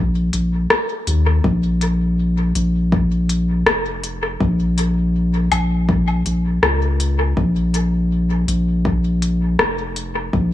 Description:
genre	ambient dub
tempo	81 BPM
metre	4/4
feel	swing 54% on 16ths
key	unclear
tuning	A4 = 440 Hz
part	round analog bass	bass	0.0-10.5 s	F1 to Eb2	-17 LUFS	left 1 dB	none
part	organic electronic drum kit	drums	0.3-10.1 s	hi-hat, rim click, woodblock	-20 LUFS	left 2 dB	dub echo
part	electronic kick drum	drums	1.4-10.5 s	none	-20 LUFS	left 1 dB	none
room	digital ambience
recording	echo-heavy mix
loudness	-16 LUFS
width	side -13 dB against mid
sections	0.0-10.5 A section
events	none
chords	none

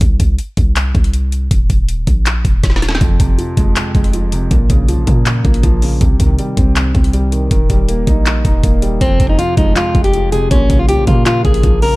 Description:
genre	hip hop, trap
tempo	160 BPM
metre	4/4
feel	half-time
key	F minor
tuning	A4 = 440 Hz
part	hard-hitting 808-style bass	bass	0.0-12.0 s	Eb1 to Bb2	-15 LUFS	equal	none
part	trap drum kit	drums	0.0-11.9 s	handclaps, hi-hat, kick drum, snare drum	-14 LUFS	equal	none
part	dark concert grand piano	accompaniment	3.0-12.0 s	F2 to Eb4	-18 LUFS	right 1 dB	low-pass filter
part	fingerpicked plugged-in steel-string acoustic guitar	melody	9.0-12.0 s	C4 to Bb4	-15 LUFS	left 1 dB	low-pass filter
room	small room ambience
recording	dark, warm production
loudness	-11 LUFS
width	side -21 dB against mid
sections	0.0-12.0 A section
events	break 0.0-3.0; drum fill 2.6-3.0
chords	0.0 N.C.; 1.5 Eb5; 3.0 Fm; 4.5 Bbm; 6.0 Cm; 7.5 Eb; 9.0 Fm; 10.5 Bbm

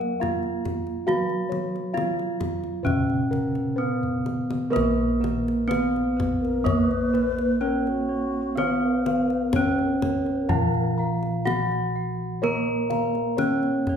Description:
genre	Javanese gamelan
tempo	63 BPM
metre	4/4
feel	uneven beats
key	Bb pelog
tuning	A4 = 442 Hz
part	gamelan-type bronze metallophone	melody	0.0-14.0 s	Bb3 to Bb4	-25 LUFS	right 1 dB	none
part	gamelan-type bronze metallophone	accompaniment	0.0-14.0 s	Db3-30c to Cb4+20c	-30 LUFS	right 3 dB	none
part	gamelan-type bossed gongs	arpeggios	0.0-13.9 s	Bb4 to Bb5	-32 LUFS	left 4 dB	none
part	gamelan-type bossed gongs	bass	0.0-14.0 s	Bb1 to Cb5+20c	-31 LUFS	equal	none
part	kendang	percussion	0.0-14.0 s	none	-31 LUFS	left 2 dB	none
part	gamelan-type bronze metallophone	arpeggios	4.7-14.0 s	Bb4 to Bb5	-34 LUFS	right 3 dB	none
part	mellow hollow xiao	second line	6.4-11.1 s	F4-33c to Cb5+27c	-32 LUFS	left 7 dB	none
room	wet recital hall reverb, RT60 1.3 s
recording	recorded in a church or concert hall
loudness	-22 LUFS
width	side -7 dB against mid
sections	0.0-4.7 A section; 4.7-14.0 B section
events	drum fill 4.0-4.7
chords	none

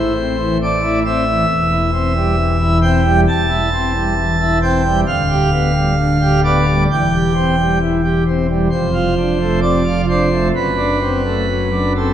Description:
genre	classical, chorale-style piece for pipe organ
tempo	66 BPM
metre	4/4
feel	rubato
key	C major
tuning	A4 = 440 Hz
part	pipe organ, principal chorus	solo	0.0-12.1 s	D1 to A5	-13 LUFS	equal	none
room	wet concert hall reverb, RT60 1.9 s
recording	none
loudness	-13 LUFS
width	side -10 dB against mid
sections	0.0-12.1 A section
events	none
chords	0.0 Am; 1.5 C/E; 5.1 G7/D; 6.9 C/E; 8.7 Dm7/F; 10.5 D7/F#

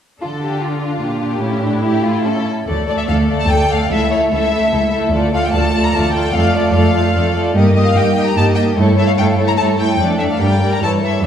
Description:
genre	quick classical-period movement for string orchestra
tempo	148 BPM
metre	3/4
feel	straight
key	D minor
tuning	A4 = 440 Hz
part	clear studio violin section	melody	0.2-11.3 s	E4 to Bb5	-21 LUFS	left 3 dB	none
part	rich studio violin section	second line	0.2-11.2 s	E4 to E5	-20 LUFS	left 2 dB	none
part	rich studio viola section	accompaniment	0.2-11.3 s	E3 to A4	-19 LUFS	right 1 dB	none
part	rich studio cello section	bass	0.2-11.3 s	C#2 to D3	-17 LUFS	right 1 dB	none
room	wet scoring stage reverb, RT60 1.5 s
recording	heard from further back in the room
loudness	-13 LUFS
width	side -9 dB against mid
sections	0.2-2.7 A section; 2.7-11.3 B section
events	none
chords	0.2 Dm; 1.4 A7; 2.7 D5; 3.9 A/C#; 5.1 Dm; 6.3 Dm/F; 7.6 Eb/G; 8.8 A7/G; 10.0 Dm/F; 10.4 Gm; 10.8 A7/G

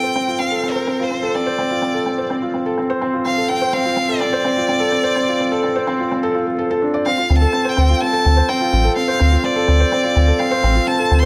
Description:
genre	piano and strings electronica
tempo	126 BPM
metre	4/4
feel	straight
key	D minor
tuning	A4 = 439 Hz
part	clear violin	melody	0.0-11.3 s	Bb4 to C6	-22 LUFS	equal	none
part	felt-muted upright piano	riff	0.0-11.3 s	C4 to D5	-21 LUFS	equal	digital delay
part	warm sub bass	bass	7.3-11.3 s	A1 to D2	-16 LUFS	equal	none
room	moderate echo chamber reverb, RT60 2.1 s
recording	none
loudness	-18 LUFS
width	mono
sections	0.0-7.1 A section; 7.1-11.3 B section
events	build-up 0.0-7.1; drop 7.1-11.3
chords	0.0 Dm7

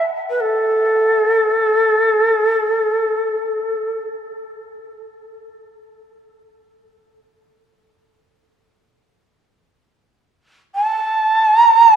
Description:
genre	japanese traditional, Japanese chamber music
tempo	free time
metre	none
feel	none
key	unclear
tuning	A4 = 440 Hz
part	breathy shakuhachi	solo	0.0-4.0, 10.7-12.0 s	A4 to A5	-14 LUFS	right 1 dB	none
room	moderate cathedral reverb, RT60 6.2 s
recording	minimal, uncompressed stereo recording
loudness	-14 LUFS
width	side -8 dB against mid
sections	0.0-9.3 A section; 9.3-12.0 A section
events	none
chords	none

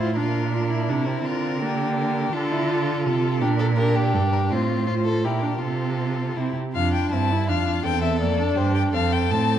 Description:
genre	quick classical-period movement for string quartet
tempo	165 BPM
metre	3/4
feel	rubato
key	F major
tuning	A4 = 438 Hz
part	warm violin	melody	0.0-9.6 s	G4 to A5	-29 LUFS	left 9 dB	none
part	rich violin	second line	0.0-9.6 s	D4 to Bb4	-28 LUFS	left 3 dB	none
part	warm viola	accompaniment	0.0-9.6 s	Bb3 to F4	-27 LUFS	right 2 dB	none
part	warm cello	bass	0.0-9.6 s	E2 to D3	-24 LUFS	right 4 dB	none
room	moderate scoring stage reverb, RT60 2.1 s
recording	dark, warm production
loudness	-20 LUFS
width	side -10 dB against mid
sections	0.0-6.8 A section; 6.8-9.6 B section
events	none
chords	0.2 Bb; 1.2 Bb/D; 2.3 Dm; 3.4 Gm/Bb; 4.5 F/A; 5.2 Bb; 5.6 F/C; 6.8 F; 7.9 C7/E; 8.9 F

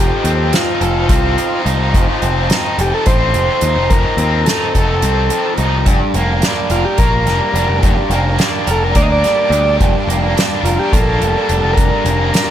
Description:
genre	psychedelic rock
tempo	214 BPM (eighths)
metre	7/8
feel	straight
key	F mixolydian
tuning	A4 = 440 Hz
part	overdriven combo organ	melody	0.0-12.5 s	F4 to Eb5	-19 LUFS	equal	tape echo
part	warm chamber string section	sustained chords	0.0-12.5 s	Bb3 to A5	-27 LUFS	right 7 dB	none
part	overdriven electric guitar	riff	0.0-12.5 s	G2 to Bb4	-18 LUFS	equal	harmonic tremolo
part	growling picked electric bass	bass	0.0-12.3 s	F1 to Eb2	-17 LUFS	equal	overdrive
part	soft-mallet drum kit	drums	0.2-12.5 s	hi-hat, kick drum, snare drum	-16 LUFS	equal	none
room	studio ambience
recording	none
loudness	-12 LUFS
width	side -10 dB against mid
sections	0.0-12.5 A section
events	none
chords	0.0 F7; 5.9 Gmadd9/F

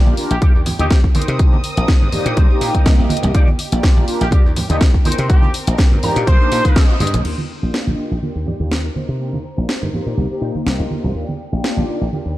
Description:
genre	filtered disco house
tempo	123 BPM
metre	4/4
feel	swing 55% on 16ths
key	Eb major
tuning	A4 = 441 Hz
part	mellow synth brass	accompaniment	0.0-12.2 s	Bb3 to D5	-25 LUFS	equal	chorus, phaser, sidechain pumping, low-pass filter
part	warm symphonic violin section	sustained chords	0.0-12.4 s	C4 to Eb6	-31 LUFS	equal	sidechain pumping, low-pass filter
part	dry thumbed slap bass	bass	0.1-12.4 s	Bb1 to C3	-20 LUFS	equal	sidechain pumping, low-pass filter
part	tube shaker and congas	percussion	0.1-12.3 s	none	-25 LUFS	right 2 dB	sidechain pumping on perc, low-pass filter on perc
part	electric guitar with an envelope filter	riff	0.2-12.1 s	Eb4 to Bb5	-28 LUFS	left 2 dB	ensemble chorus, sidechain pumping, low-pass filter
part	house drum kit	drums	0.2-11.7 s	crash cymbal, hi-hat, snare drum	-23 LUFS	equal	sidechain pumping on hats, sidechain pumping on cymbals
part	clear horn section	melody	0.3-1.0, 4.2-7.0 s	G4 to C5	-24 LUFS	right 1 dB	vintage 12-bit sampler grit, sidechain pumping, low-pass filter, digital delay
part	electronic kick drum	drums	0.4-6.9 s	none	-12 LUFS	equal	none
room	little or no reverb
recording	dark, warm production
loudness	-14 LUFS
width	side -16 dB against mid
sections	0.0-7.2 A section; 7.2-12.4 B section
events	clean electric guitar fill 5.8-7.2; band accent 6.8; filter sweep 7.2-12.4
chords	0.0 Ebmaj7; 1.1 Cm7; 3.3 Ebmaj7; 5.1 Cm7; 7.2 Ebmaj7; 9.0 Cm7; 11.2 Ebmaj7

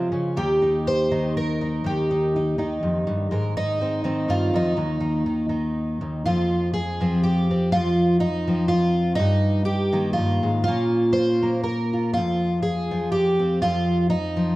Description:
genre	folk, solo fingerstyle acoustic guitar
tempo	122 BPM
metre	3/4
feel	rubato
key	unclear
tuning	A4 = 440 Hz
part	fingerpicked twelve-string acoustic guitar	solo	0.0-14.6 s	Eb2 to C5	-20 LUFS	equal	none
room	moderate recital hall reverb, RT60 1.7 s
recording	dark, warm production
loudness	-20 LUFS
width	side -18 dB against mid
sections	0.0-6.3 A section; 6.3-14.6 B section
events	none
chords	0.4 Eb; 3.3 Abadd9; 4.8 N.C.; 6.3 Fmadd9; 9.2 Ebadd9/G; 10.7 Bbmadd9; 12.2 Fmadd9

